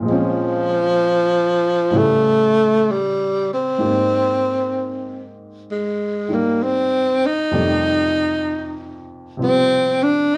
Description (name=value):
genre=jazz ballad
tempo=64 BPM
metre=4/4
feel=swing 66% on 8ths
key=unclear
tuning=A4 = 438 Hz
part: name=warm baby grand piano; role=accompaniment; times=0.0-10.4 s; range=F2 to D5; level=-26 LUFS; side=equal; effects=none
part: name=breathy tenor saxophone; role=melody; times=0.1-10.4 s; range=F3 to Eb4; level=-19 LUFS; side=equal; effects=none
room=wet small room reverb, RT60 0.5 s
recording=band playing live in one room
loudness=-18 LUFS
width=mono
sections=0.0-10.4 A section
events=none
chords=0.1 Bbm7; 1.9 A9; 3.8 Abmaj7; 7.5 F13